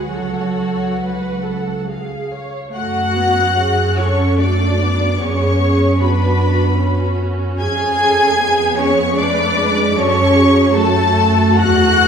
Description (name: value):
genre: classical, slow romantic movement for string orchestra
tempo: 66-78 BPM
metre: 3/4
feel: rubato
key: F# minor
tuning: A4 = 440 Hz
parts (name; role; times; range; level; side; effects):
- rich studio violin section; melody; 0.0-12.1 s; E#5 to G#6; -20 LUFS; left 4 dB; none
- warm studio violin section; second line; 0.0-12.1 s; F#4 to G#5; -20 LUFS; left 1 dB; none
- rich studio viola section; accompaniment; 0.0-12.1 s; F#3 to C#5; -21 LUFS; right 1 dB; none
- dark studio cello section; bass; 0.0-12.1 s; F#3 to G#4; -20 LUFS; right 1 dB; none
- warm studio double bass section; bass; 0.0-12.1 s; C#2 to F#2; -19 LUFS; right 1 dB; none
room: wet concert hall reverb, RT60 1.7 s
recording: heard from further back in the room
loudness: -13 LUFS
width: side -7 dB against mid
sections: 0.0-2.8 A section; 2.8-12.1 B section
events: none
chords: 0.1 F#m/C#; 1.9 C#; 2.8 F#m; 5.2 G#m7b5/F#; 7.6 C#7/E#; 10.0 F#m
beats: | 0.11 1.02 1.90 | 2.75 3.58 4.42 | 5.21 6.02 6.82 | 7.61 8.41 9.20 | 9.97 10.75 11.61